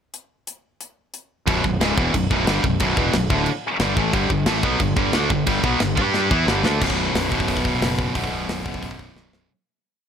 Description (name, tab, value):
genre	heavy metal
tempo	180 BPM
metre	4/4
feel	straight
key	B minor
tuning	A4 = 437 Hz
part	tight metal drum kit	drums	0.1-9.4 s	crash cymbal, hi-hat, kick drum, snare drum	-24 LUFS	equal	none
part	high-gain distorted guitar	riff	1.5-9.5 s	B1 to G4	-24 LUFS	left 10 dB	distortion
part	high-gain distorted guitar	riff	1.5-9.5 s	B1 to G4	-23 LUFS	right 10 dB	distortion
part	fuzz fingered electric bass	bass	1.5-9.5 s	B0 to G2	-26 LUFS	equal	overdrive
room	light reverb, small room ambience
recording	none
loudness	-18 LUFS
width	side -8 dB against mid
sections	0.1-1.5 pickup bar; 1.5-6.8 riff; 6.8-9.5 outro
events	drum fill 6.1-6.8, 9.2-9.5; fade-out 7.9-9.5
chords	0.1 N.C.; 1.5 Bm; 4.1 G5; 6.8 B5